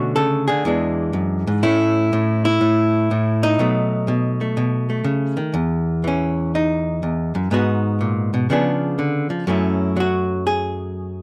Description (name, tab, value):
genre	solo jazz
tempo	123 BPM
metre	4/4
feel	swing 66% on 8ths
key	unclear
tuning	A4 = 440 Hz
part	archtop guitar, miked and amplified	solo	0.0-11.2 s	E2 to A4	-20 LUFS	equal	none
room	little or no reverb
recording	dry, close 1970s-style studio recording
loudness	-20 LUFS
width	mono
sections	0.0-5.5 A section; 5.5-11.2 B section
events	hollow-body jazz guitar solo 5.5-11.2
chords	0.0 Bm9; 0.7 E9; 1.6 A; 3.6 B9; 5.5 N.C.; 7.5 G#m9; 8.5 C#7b9; 9.5 F#m9